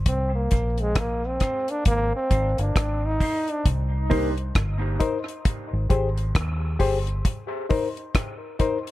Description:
dub reggae; 67 BPM; 4/4; swing 60% on 16ths; C minor; A4 = 444 Hz
vintage muted fingered electric bass; bass; 0.0-7.2 s; G1 to Eb2; -25 LUFS; equal
warm trombone; melody; 0.1-3.7 s; Ab3 to Eb4; -27 LUFS; equal; dub echo
deep reggae drum kit; drums; 0.1-8.9 s; hi-hat, kick drum, rim click; -24 LUFS; equal
mellow electric guitar; accompaniment; 0.5-4.3 s; Bb3 to C5; -34 LUFS; right 4 dB; high-pass filter, dub echo
reed electric piano; stabs; 0.5-8.8 s; Eb4 to C5; -28 LUFS; left 5 dB; overdrive, high-pass filter, dub echo
light reverb, small room ambience; -22 LUFS; side -16 dB against mid
0.0-8.9 A section
break 7.2-8.9
0.1 Cm7; 1.9 Abmaj7; 3.7 Cm7; 5.5 Abmaj7; 7.2 Cm7
| 0.06 0.96 1.86 2.76 | 3.65 4.55 5.45 6.35 | 7.25 8.14

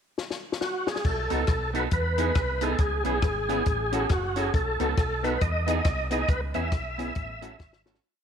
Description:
ska; 138 BPM; 4/4; swing 59% on 8ths; E major; A4 = 440 Hz
compact cocktail drum kit; drums; 0.2-8.0 s; crash cymbal, hi-hat, kick drum, rim click, snare drum; -28 LUFS; left 1 dB
overdriven tonewheel organ; melody; 0.6-7.8 s; F#4 to E5; -28 LUFS; equal; chorus vibrato, fast rotary speaker
fingered electric bass; bass; 1.0-8.0 s; F#1 to E2; -31 LUFS; equal
clean electric guitar; accompaniment; 1.3-8.0 s; B3 to A4; -33 LUFS; right 11 dB; tape echo
tonewheel organ; stabs; 1.3-8.0 s; A3 to B4; -34 LUFS; left 10 dB; overdrive, chorus vibrato, stopped rotary speaker
moderate echo chamber reverb, RT60 1.8 s, small room ambience; 1960s-style stereo with parts hard left and right; -24 LUFS; side -8 dB against mid
0.0-1.1 pickup bar; 1.1-8.0 A section
drum fill 0.2-1.1, 7.6-8.0; fade-out 6.3-8.0
0.0 N.C.; 1.1 B7; 1.9 Emaj7; 2.8 C#m7; 3.7 A6; 4.5 B7; 5.4 Emaj7; 6.3 C#m7; 7.2 A6
0.18 0.61 | 1.05 1.49 1.92 2.36 | 2.79 3.23 3.67 4.10 | 4.54 4.97 5.41 5.85 | 6.29 6.72 7.16 7.60

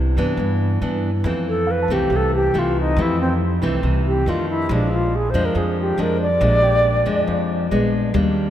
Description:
bossa nova; 139 BPM; 4/4; straight; A4 = 440 Hz
nylon-string guitar; accompaniment; 0.0-8.5 s; F2 to D4; -21 LUFS; left 1 dB
upright bass; bass; 0.0-8.5 s; Bb1 to G2; -22 LUFS; equal
bright reedy wooden-headed alto flute; melody; 1.5-7.2 s; C4 to D5; -21 LUFS; equal
warm baby grand piano; accompaniment; 1.7-7.7 s; E4 to A5; -33 LUFS; right 3 dB
moderate cathedral reverb, RT60 5.2 s; in a vast, echoing space; -17 LUFS; side -11 dB against mid
0.0-8.5 A section
alto flute solo 0.0-8.5
0.0 Cmaj9; 1.2 Fmaj7; 4.3 F6; 4.7 Bb7; 7.7 Bb7b9
0.39 0.82 | 1.25 1.68 2.11 2.54 | 2.97 3.40 3.83 4.26 | 4.70 5.12 5.56 5.99 | 6.42 6.85 7.28 7.71 | 8.14

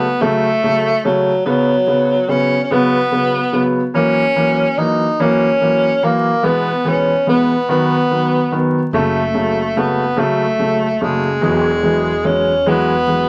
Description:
pop; 48 BPM (dotted quarters); 6/8; straight; A4 = 440 Hz
warm tenor saxophone; melody; 0.0-13.3 s; F#3 to D#4; -18 LUFS; equal
warm concert grand piano; accompaniment; 0.0-13.3 s; B2 to B3; -19 LUFS; equal
upright bass; bass; 8.9-13.3 s; E1 to F#1; -27 LUFS; equal
moderate studio reverb, RT60 0.6 s; vinyl crackle; -16 LUFS; mono
0.0-13.3 A section
0.0 F#m; 1.5 Bsus2; 3.9 F#7; 6.4 E/B; 7.7 B; 8.9 F#m; 11.4 Eadd9
0.21 | 1.45 2.70 | 3.95 5.20 | 6.44 7.69 | 8.94 10.18 | 11.43 12.67

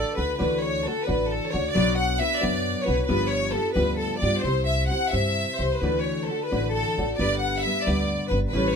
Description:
mexican folk, mariachi; 89 BPM (dotted quarters); 6/8; rubato; D major; A4 = 440 Hz
clear studio violin section; melody; 0.0-8.8 s; A4 to F#5; -25 LUFS; left 1 dB
nylon-string guitar; accompaniment; 0.0-8.8 s; G2 to D5; -27 LUFS; left 1 dB
upright bass; bass; 0.0-8.8 s; G1 to G2; -28 LUFS; equal
light reverb; minimal, uncompressed stereo recording; -22 LUFS; side -6 dB against mid
0.4-8.8 A section
0.4 Dadd9; 1.8 Bm; 3.1 G7; 4.4 C; 5.8 Dadd9; 7.2 G
| 0.39 1.08 | 1.75 2.42 | 3.09 3.76 | 4.44 5.12 | 5.81 6.51 | 7.19 7.86 | 8.53

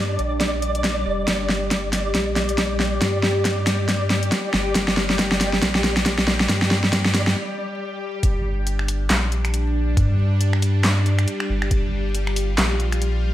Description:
deep dubstep; 138 BPM; 4/4; swing 58% on 16ths, half-time; G minor; A4 = 441 Hz
bowed-like drone; sustained chords; 0.0-13.3 s; G3 to G4; -27 LUFS; left 1 dB; built-in reverb, phaser
soft dub sub bass; bass; 0.0-13.3 s; F1 to G2; -23 LUFS; equal
flickering grainy texture; texture; 0.0-7.4 s; D5; -29 LUFS; right 1 dB; built-in reverb
dubstep drum kit; drums; 0.2-13.1 s; finger snaps, handclaps, hi-hat, snare drum; -21 LUFS; equal; overdrive, studio reverb
electronic kick drum; drums; 0.4-11.8 s; -23 LUFS; equal; high-pass filter on kick, studio reverb
moderate echo chamber reverb, RT60 1.3 s; vinyl crackle; -18 LUFS; side -13 dB against mid
0.0-8.2 A section; 8.2-13.3 B section
build-up 0.0-8.2; drum fill 0.0-7.4; filter sweep on synth drone 0.0-8.2; break 7.4-8.2; drop 8.2-13.3
0.0 G5
0.41 0.84 | 1.28 1.71 2.15 2.58 | 3.02 3.45 3.88 4.32 | 4.75 5.19 5.62 6.06 | 6.49 6.93 7.36 7.80 | 8.23 8.67 9.10 9.54 | 9.97 10.41 10.84 11.28 | 11.71 12.14 12.58 13.02

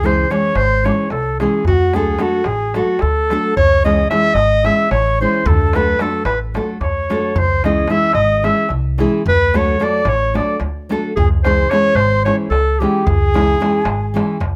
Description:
balkan folk, Balkan wedding band; 221 BPM (eighths); 7/8; straight; A4 = 437 Hz
clear clarinet; melody; 0.0-14.4 s; F#4 to E5; -19 LUFS; equal; plate reverb
mellow bansuri; second line; 0.0-14.4 s; F#5 to E6; -26 LUFS; equal
nylon-string guitar; accompaniment; 0.0-14.4 s; E3 to A4; -21 LUFS; equal
upright bass; bass; 0.0-14.6 s; G#1 to D2; -21 LUFS; equal
darbuka; percussion; 0.1-14.5 s; -24 LUFS; equal
light reverb; close, detailed microphones; -16 LUFS; mono
0.0-14.6 A section
0.0 C#m; 1.7 D; 3.6 C#m; 5.5 D; 7.4 C#m; 9.3 D; 11.2 C#m
0.04 0.32 0.59 0.86 1.13 1.40 | 1.67 1.94 2.21 2.48 2.75 3.02 3.29 | 3.56 3.84 4.11 4.38 4.65 4.92 5.19 | 5.46 5.73 6.00 6.28 6.55 6.82 7.09 | 7.36 7.63 7.90 8.18 8.45 8.72 8.99 | 9.26 9.53 9.80 10.08 10.35 10.62 10.89 | 11.16 11.44 11.71 11.98 12.25 12.52 12.79 | 13.07 13.34 13.61 13.88 14.15 14.42

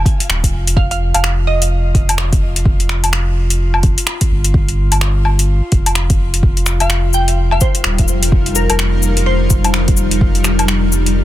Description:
future garage; 127 BPM; 4/4; swing 60% on 16ths; A4 = 440 Hz
glassy wavetable pluck; melody; 0.0-2.1, 6.8-9.7 s; Bb4 to Ab5; -22 LUFS; right 1 dB; chorus, tape echo
warm sub bass; bass; 0.0-11.2 s; Eb1 to G1; -15 LUFS; equal; tube saturation, sidechain pumping
drifting glass-harmonics texture; texture; 0.0-11.2 s; F4 to F5; -27 LUFS; left 5 dB; chorus, built-in reverb
deep house drum kit; drums; 0.1-11.1 s; cabasa, finger snaps, hi-hat, woodblock; -18 LUFS; left 2 dB; overdrive, soft clipping on snare
electronic kick drum; drums; 0.1-10.3 s; -14 LUFS; equal; overdrive
granular cloud pad; sustained chords; 7.5-11.2 s; G3 to Bb4; -20 LUFS; left 1 dB; built-in reverb, vintage 12-bit sampler grit, sidechain pumping
digital ambience; dense, heavily limited modern master; -12 LUFS; side -14 dB against mid
0.0-11.2 A section
0.0 N.C.; 6.4 Eb
0.29 | 0.76 1.23 1.71 2.18 | 2.65 3.12 3.60 4.07 | 4.54 5.01 5.49 5.96 | 6.43 6.90 7.38 7.85 | 8.32 8.79 9.27 9.74 | 10.21 10.68 11.15

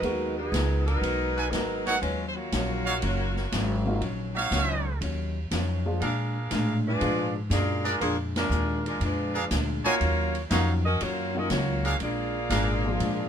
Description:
jazz, big band swing; 120 BPM; 4/4; swing 68% on 8ths; Eb minor; A4 = 442 Hz
mellow saxophone section; melody; 0.0-3.9, 6.9-13.3 s; F3 to Eb5; -29 LUFS; equal
vintage hollow-body jazz guitar; accompaniment; 0.0-13.3 s; Bb2 to Bb4; -34 LUFS; left 4 dB
warm concert grand piano; accompaniment; 0.0-0.3, 3.9-7.3, 10.5-13.3 s; Eb3 to Gb4; -31 LUFS; left 1 dB
upright bass; bass; 0.0-13.3 s; Gb1 to Bb2; -28 LUFS; equal
swinging big-band drum kit; drums; 0.0-13.2 s; hi-hat, ride cymbal, snare drum; -35 LUFS; right 1 dB
bright trumpet section; stabs; 1.4-12.7 s; D4 to Ab5; -29 LUFS; right 3 dB
moderate club ambience, RT60 0.5 s; minimal, uncompressed stereo recording; -24 LUFS; side -8 dB against mid
0.0-13.3 A section
band accent 8.3
0.0 Abm9; 2.0 Ebm9; 6.0 Bb7; 10.0 Ebm9; 12.0 Bb7
| 0.02 0.52 1.02 1.52 | 2.02 2.52 3.02 3.51 | 4.01 4.51 5.01 5.51 | 6.01 6.51 7.01 7.51 | 8.01 8.50 9.00 9.50 | 10.00 10.50 11.00 11.50 | 12.00 12.50 13.00

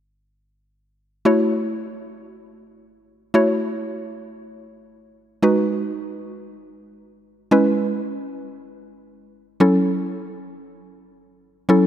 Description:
pop; free time; F# dorian; A4 = 440 Hz
mallet-like synth pluck; accompaniment; 1.3-11.9 s; F#3 to C#5; -18 LUFS; equal; chorus
moderate lush hall reverb, RT60 2.9 s; -18 LUFS; side -10 dB against mid
1.3-11.9 A section
1.3 F#m7; 5.4 G#m7; 7.5 C#m7; 9.6 F#m7
free time

